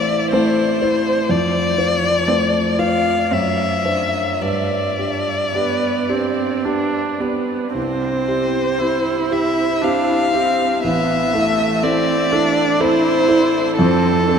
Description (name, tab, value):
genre	classical, slow romantic movement for piano quartet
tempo	52-63 BPM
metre	3/4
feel	rubato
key	C major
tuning	A4 = 439 Hz
part	warm violin	melody	0.0-14.4 s	A4 to F5	-19 LUFS	left 3 dB	none
part	rich viola	accompaniment	0.0-14.4 s	A3 to E4	-22 LUFS	right 5 dB	none
part	warm grand piano	accompaniment	0.0-14.4 s	A1 to C5	-20 LUFS	equal	none
room	wet huge ambient reverb, RT60 7.7 s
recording	in a vast, echoing space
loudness	-15 LUFS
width	side -7 dB against mid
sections	0.0-14.4 A section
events	none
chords	0.0 Am; 1.3 Dm7/F; 3.3 D7/F#; 4.4 G; 7.8 C; 10.8 Am; 13.8 Dm7/F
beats	0.32 | 1.30 2.28 3.32 | 4.42 5.55 6.66 | 7.76 8.81 9.84 | 10.84 11.84 12.80 | 13.79